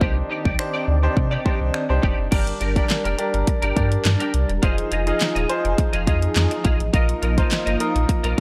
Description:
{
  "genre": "dance-pop",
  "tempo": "104 BPM",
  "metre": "4/4",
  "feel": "straight",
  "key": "unclear",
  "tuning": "A4 = 440 Hz",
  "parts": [
    { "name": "hollow square pluck", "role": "melody", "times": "0.0-1.7 s", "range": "C5", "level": "-38 LUFS", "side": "equal", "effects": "chorus, tape echo" },
    { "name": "clear concert grand piano", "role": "accompaniment", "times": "0.0-8.4 s", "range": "D4 to Eb5", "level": "-29 LUFS", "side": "equal", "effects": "sidechain pumping" },
    { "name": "filtered supersaw swell", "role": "sustained chords", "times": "0.0-8.4 s", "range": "Eb3 to D5", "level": "-31 LUFS", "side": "equal", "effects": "sidechain pumping" },
    { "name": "twelve-string electric guitar", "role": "riff", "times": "0.0-8.4 s", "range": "D4 to Eb5", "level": "-31 LUFS", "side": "equal", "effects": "ensemble chorus" },
    { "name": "warm sub bass", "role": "bass", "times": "0.0-8.4 s", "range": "Eb1 to C3", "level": "-24 LUFS", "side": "equal", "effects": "sidechain pumping" },
    { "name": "pop drum kit", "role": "drums", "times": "0.0-8.4 s", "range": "crash cymbal, finger snaps, handclaps, hi-hat, kick drum, snare drum", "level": "-24 LUFS", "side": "equal", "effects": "none" }
  ],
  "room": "light reverb, digital ambience",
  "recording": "dry, gritty hardware recording",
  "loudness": "-21 LUFS",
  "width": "mono",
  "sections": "0.0-2.3 A section; 2.3-8.4 B section",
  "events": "none",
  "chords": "0.0 Cmadd9; 2.3 Gm; 4.6 Fm7; 6.9 Bbsus4"
}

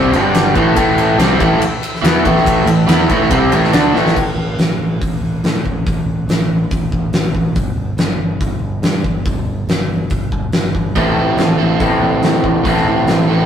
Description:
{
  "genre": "classic rock",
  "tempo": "142 BPM",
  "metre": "4/4",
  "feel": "straight",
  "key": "A minor",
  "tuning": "A4 = 440 Hz",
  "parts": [
    { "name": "overdriven tonewheel organ", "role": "sustained chords", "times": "0.0-4.1 s", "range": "D4 to G5", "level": "-27 LUFS", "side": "equal", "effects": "none" },
    { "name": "overdriven electric guitar", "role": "riff", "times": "0.0-4.2, 11.0-13.5 s", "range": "G2 to A4", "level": "-15 LUFS", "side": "right 4 dB", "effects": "none" },
    { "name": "raw garage guitar", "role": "riff", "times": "0.0-4.2, 11.0-13.5 s", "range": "G2 to E4", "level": "-15 LUFS", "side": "left 3 dB", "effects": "overdrive, spring reverb" },
    { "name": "growling fingered electric bass", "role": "bass", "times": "0.0-13.4 s", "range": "G1 to A2", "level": "-20 LUFS", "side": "equal", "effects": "overdrive" },
    { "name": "huge arena drum kit", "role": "drums", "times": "0.1-13.2 s", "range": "crash cymbal, hi-hat, kick drum, ride cymbal, snare drum", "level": "-17 LUFS", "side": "equal", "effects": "none" }
  ],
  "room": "moderate studio reverb, RT60 0.7 s",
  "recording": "rough rehearsal-room recording",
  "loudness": "-12 LUFS",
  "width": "side -9 dB against mid",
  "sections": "0.0-4.2 A section; 4.2-13.5 B section",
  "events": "drum fill 3.9",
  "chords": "0.1 G5; 0.6 Am; 4.2 N.C.; 11.0 Am"
}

